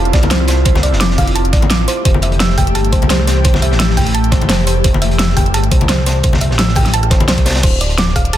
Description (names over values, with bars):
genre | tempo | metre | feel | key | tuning
liquid drum and bass | 172 BPM | 4/4 | swing 54% on 16ths | unclear | A4 = 442 Hz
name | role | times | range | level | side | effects
airy breathy pad | sustained chords | 0.0-7.6 s | E3 to G4 | -21 LUFS | left 1 dB | chorus, phaser
thumb-piano-like synth pluck | arpeggios | 0.0-8.4 s | C5 to E6 | -20 LUFS | right 4 dB | chorus, digital delay
smooth gliding synth bass | bass | 0.0-8.4 s | D1 to C2 | -15 LUFS | equal | none
crunchy breakbeat drum kit | drums | 0.1-8.4 s | hi-hat, snare drum | -23 LUFS | equal | high-pass filter on hats, high-pass filter on snare, high-pass filter on room
electronic kick drum | drums | 0.1-8.2 s | none | -14 LUFS | equal | overdrive
pop drum kit | drums | 0.1-8.4 s | crash cymbal, hi-hat, rim click, snare drum | -18 LUFS | equal | overdrive
congas | percussion | 0.2-7.3 s | none | -22 LUFS | left 3 dB | none
room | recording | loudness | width
light reverb, small room ambience | dense, heavily limited modern master | -10 LUFS | side -12 dB against mid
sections
0.0-7.6 A section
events
drop 0.0-7.6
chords
0.0 Dm9; 1.9 Fmaj9; 7.6 Dm7